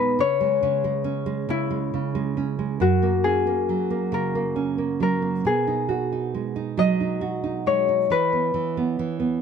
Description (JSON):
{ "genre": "children's music, lullaby", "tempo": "45 BPM (dotted quarters)", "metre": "6/8", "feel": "rubato", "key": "B major", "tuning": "A4 = 440 Hz", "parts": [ { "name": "Celtic harp", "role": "melody", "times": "0.0-9.4 s", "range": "E4 to D#5", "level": "-24 LUFS", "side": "left 5 dB", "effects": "none" }, { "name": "nylon-string guitar", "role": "accompaniment", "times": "0.0-9.4 s", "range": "F#2 to F#4", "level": "-24 LUFS", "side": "right 6 dB", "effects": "none" } ], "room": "moderate studio reverb, RT60 0.6 s", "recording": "dark, warm production", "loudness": "-21 LUFS", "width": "side -7 dB against mid", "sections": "0.0-9.4 A section", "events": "none", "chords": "0.2 C#m; 2.8 F#add9; 5.5 B6; 8.1 E5" }